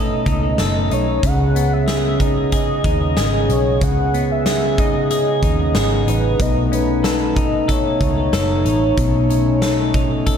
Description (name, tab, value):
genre	dream pop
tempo	93 BPM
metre	4/4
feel	straight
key	unclear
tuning	A4 = 437 Hz
part	warm velvety synth lead	melody	0.0-10.4 s	B4 to F#5	-23 LUFS	equal	chorus, tape echo, shimmer reverb
part	mellow brass ensemble	sustained chords	0.0-10.4 s	C#3 to G#4	-21 LUFS	equal	stereo widening, shimmer reverb
part	semi-hollow electric guitar	arpeggios	0.0-10.4 s	B2 to A4	-22 LUFS	left 2 dB	wide subtle chorus, tape echo, shimmer reverb
part	vintage muted fingered electric bass	bass	0.0-10.4 s	F#1 to D#2	-21 LUFS	right 1 dB	none
part	huge arena drum kit	drums	0.3-10.4 s	hi-hat, kick drum, snare drum	-21 LUFS	equal	none
room	moderate plate reverb, RT60 2.6 s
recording	dreamy mix soaked in reverb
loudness	-15 LUFS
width	side -8 dB against mid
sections	0.0-10.4 A section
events	none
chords	0.0 B9; 1.2 C#sus2; 6.4 B9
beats	0.59 | 1.23 1.88 2.52 3.17 | 3.81 4.46 5.10 5.75 | 6.39 7.04 7.68 8.33 | 8.97 9.62 10.27